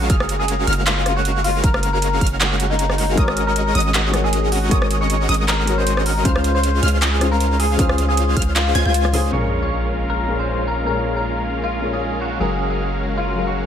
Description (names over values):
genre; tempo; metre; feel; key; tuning
future bass; 156 BPM; 4/4; swing 55% on 16ths, half-time; unclear; A4 = 440 Hz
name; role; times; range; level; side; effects
clean electric guitar; melody; 0.0-13.7 s; Eb4 to Db5; -24 LUFS; left 1 dB; analog chorus, sidechain pumping, ping-pong delay
wide unison pluck; arpeggios; 0.0-9.3 s; Eb6 to Ab6; -27 LUFS; equal; sidechain pumping, ping-pong delay
supersaw chords; riff; 0.0-13.7 s; Ab3 to Ab5; -24 LUFS; equal; sidechain pumping, low-pass filter
long sustained 808-style bass; bass; 0.0-13.7 s; Gb1 to Db2; -21 LUFS; equal; sidechain pumping
dubstep drum kit; drums; 0.1-9.2 s; handclaps, hi-hat, rim click; -23 LUFS; right 1 dB; low-pass filter on snare, low-pass filter on hats, low-pass filter on cymbals
electronic kick drum; drums; 0.1-8.5 s; none; -18 LUFS; equal; none
dark grand piano; accompaniment; 3.2-13.7 s; Bb2 to F5; -25 LUFS; left 5 dB; sidechain pumping
sub drop; sound effects; 9.3-10.9 s; none; -31 LUFS; right 1 dB; none
room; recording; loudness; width
light reverb, digital ambience; none; -16 LUFS; side -9 dB against mid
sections
0.0-9.3 A section; 9.3-13.7 B section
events
drop 0.0-9.3; impact 9.3-10.9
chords
0.1 Gbmaj9; 3.2 Ab9sus4; 6.3 Dbmaj7; 9.3 Bbm7; 12.4 Gbmaj9